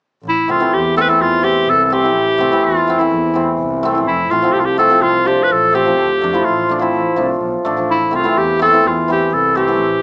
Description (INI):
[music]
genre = klezmer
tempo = 126 BPM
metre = 4/4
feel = straight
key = A minor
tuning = A4 = 439 Hz
[part]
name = warm double bass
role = bass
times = 0.2-9.9 s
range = F1 to F2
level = -25 LUFS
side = equal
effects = none
[part]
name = clear clarinet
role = melody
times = 0.3-10.0 s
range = E4 to B4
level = -14 LUFS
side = equal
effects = none
[part]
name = hammered dulcimer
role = accompaniment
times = 0.5-10.0 s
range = E3 to E4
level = -16 LUFS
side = equal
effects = none
[sound]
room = light reverb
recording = small speaker sound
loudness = -12 LUFS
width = side -29 dB against mid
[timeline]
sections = 0.2-10.0 A section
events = none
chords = 0.2 Am; 4.1 F; 6.0 Dm; 7.9 Am